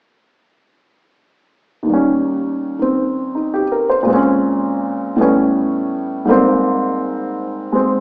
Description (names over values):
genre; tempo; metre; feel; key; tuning
solo jazz; 109 BPM; 4/4; swing 67% on 8ths; Eb mixolydian; A4 = 440 Hz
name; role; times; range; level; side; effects
dark baby grand piano; solo; 1.8-8.0 s; Eb2 to C5; -14 LUFS; equal; none
room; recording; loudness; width
wet large studio reverb, RT60 1.4 s; heard from further back in the room, AM radio sound; -14 LUFS; side -32 dB against mid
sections
1.9-8.0 A section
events
none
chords
1.9 Eb7; 4.1 Bbm9; 5.2 A9; 6.3 Abmaj9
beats
| 1.88 2.43 2.98 3.53 | 4.08 4.63 5.18 5.72 | 6.27 6.82 7.37 7.92